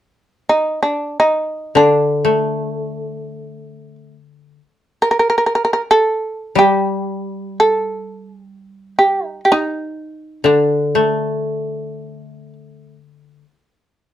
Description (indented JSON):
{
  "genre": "japanese traditional, Japanese chamber music",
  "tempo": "free time",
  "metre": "none",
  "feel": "none",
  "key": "D miyako bushi",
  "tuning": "A4 = 439 Hz",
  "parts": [
    { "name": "shamisen", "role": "melody", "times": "0.5-12.5 s", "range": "D4 to Bb4", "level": "-15 LUFS", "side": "right 1 dB", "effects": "none" },
    { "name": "koto", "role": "accompaniment", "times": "1.8-13.4 s", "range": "D3 to A3", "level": "-17 LUFS", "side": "left 2 dB", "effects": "none" }
  ],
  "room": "light reverb",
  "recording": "dark, warm production",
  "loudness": "-14 LUFS",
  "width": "side -11 dB against mid",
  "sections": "0.0-14.1 A section",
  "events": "none",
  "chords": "none",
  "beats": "free time"
}